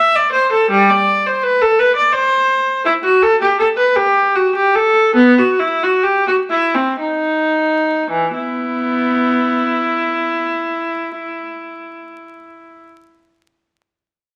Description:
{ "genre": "classical, baroque-style suite movement for unaccompanied viola", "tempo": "52-86 BPM", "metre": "3/4", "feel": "rubato", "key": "E minor", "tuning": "A4 = 444 Hz", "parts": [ { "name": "rich viola", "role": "solo", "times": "0.0-12.8 s", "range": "E3 to E5", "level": "-15 LUFS", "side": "equal", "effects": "none" } ], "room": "moderate stone room reverb, RT60 0.9 s", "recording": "vinyl crackle", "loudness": "-15 LUFS", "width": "mono", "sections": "0.0-8.1 A section; 8.1-14.4 B section", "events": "slowing down 1.8-8.1", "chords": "none" }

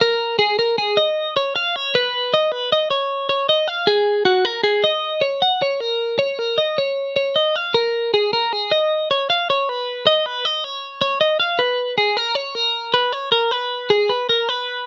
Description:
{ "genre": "rock", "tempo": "155 BPM", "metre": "5/4", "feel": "straight", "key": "unclear", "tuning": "A4 = 438 Hz", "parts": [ { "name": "twelve-string electric guitar", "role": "solo", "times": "0.0-14.9 s", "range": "F#4 to F#5", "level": "-19 LUFS", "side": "equal", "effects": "warbly pitch drift" } ], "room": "light reverb", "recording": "rough home demo mix, nothing above 7.5 kHz", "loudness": "-19 LUFS", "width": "mono", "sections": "0.0-11.6 A section; 11.6-14.9 B section", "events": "none", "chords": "none" }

